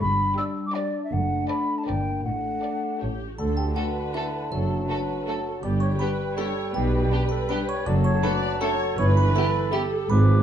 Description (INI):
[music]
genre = cinematic, playful, whimsical film cue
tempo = 161 BPM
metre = 3/4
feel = straight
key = D major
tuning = A4 = 440 Hz
[part]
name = mellow silver concert flute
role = second line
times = 0.0-10.4 s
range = D5 to E6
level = -30 LUFS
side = equal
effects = none
[part]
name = dark French horn section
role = sustained chords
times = 0.0-9.9 s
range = G3 to E4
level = -33 LUFS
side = left 4 dB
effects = none
[part]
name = rich studio cello section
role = bass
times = 0.0-10.4 s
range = D2 to B2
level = -29 LUFS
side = left 1 dB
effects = none
[part]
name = warm studio double bass section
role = bass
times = 0.0-10.4 s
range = F#1 to D2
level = -26 LUFS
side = right 1 dB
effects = none
[part]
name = rich studio violin section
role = melody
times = 0.4-9.8 s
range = G4 to D5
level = -35 LUFS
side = right 1 dB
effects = none
[part]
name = warm studio violin section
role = second line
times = 0.4-9.8 s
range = A3 to Bb4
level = -36 LUFS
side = right 1 dB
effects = none
[part]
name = warm studio viola section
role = accompaniment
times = 0.4-10.4 s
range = D4 to D5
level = -33 LUFS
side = left 2 dB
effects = none
[part]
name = music box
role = melody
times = 3.4-10.4 s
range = D5 to D6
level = -36 LUFS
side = right 2 dB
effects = none
[part]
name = dark clarinet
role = second line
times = 3.4-10.4 s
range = D4 to D5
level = -32 LUFS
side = right 1 dB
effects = none
[part]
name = warm bassoon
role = accompaniment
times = 3.4-10.4 s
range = D3 to G3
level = -32 LUFS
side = right 2 dB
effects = none
[part]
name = dark tuba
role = bass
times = 3.4-10.4 s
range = F#1 to D2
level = -30 LUFS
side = right 3 dB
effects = none
[sound]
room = wet stone room reverb, RT60 1.1 s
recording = dark, warm production, nothing above 10.4 kHz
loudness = -22 LUFS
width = side -9 dB against mid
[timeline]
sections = 0.0-3.4 A section; 3.4-10.4 B section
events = none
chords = 0.0 G; 1.1 D/F#; 1.9 Gm; 2.3 D/A; 3.0 A; 3.4 D; 4.5 D/F#; 5.6 G; 6.8 G/B; 7.9 D/F#; 9.0 Em/G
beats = | 0.01 0.38 0.75 | 1.12 1.50 1.87 | 2.25 2.64 3.02 | 3.40 3.77 4.14 | 4.52 4.89 5.27 | 5.64 6.01 6.38 | 6.75 7.13 7.50 | 7.87 8.24 8.61 | 8.99 9.36 9.73 | 10.11